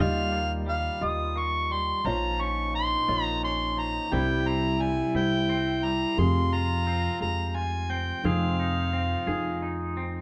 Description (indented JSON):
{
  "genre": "acoustic folk-pop ballad",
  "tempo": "58 BPM (dotted quarters)",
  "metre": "6/8",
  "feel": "straight",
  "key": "F minor",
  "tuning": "A4 = 440 Hz",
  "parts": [
    { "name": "mellow harmonica", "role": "melody", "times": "0.0-9.6 s", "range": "F5 to Eb6", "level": "-31 LUFS", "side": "equal", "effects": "none" },
    { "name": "felt-muted upright piano", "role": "accompaniment", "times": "0.0-10.2 s", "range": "F1 to Eb5", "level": "-35 LUFS", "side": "equal", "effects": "none" },
    { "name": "twangy electric guitar", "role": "arpeggios", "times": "0.0-10.2 s", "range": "F3 to Ab4", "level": "-38 LUFS", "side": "equal", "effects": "tremolo" },
    { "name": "upright bass", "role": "bass", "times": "0.0-10.2 s", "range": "Bb1 to F2", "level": "-32 LUFS", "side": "equal", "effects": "none" },
    { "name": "clear French horn", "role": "second line", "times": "2.0-10.2 s", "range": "Eb4 to F4", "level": "-34 LUFS", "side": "equal", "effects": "none" }
  ],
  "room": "moderate studio reverb, RT60 0.9 s",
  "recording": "band playing live in one room",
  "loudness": "-27 LUFS",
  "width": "mono",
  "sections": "0.0-10.2 A section",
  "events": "none",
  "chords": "0.0 Ebadd9; 2.1 Bbm; 4.1 C; 6.2 Fmadd9; 8.2 Fm7",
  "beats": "1.02 | 2.05 3.09 | 4.12 5.15 | 6.18 7.21 | 8.24 9.28"
}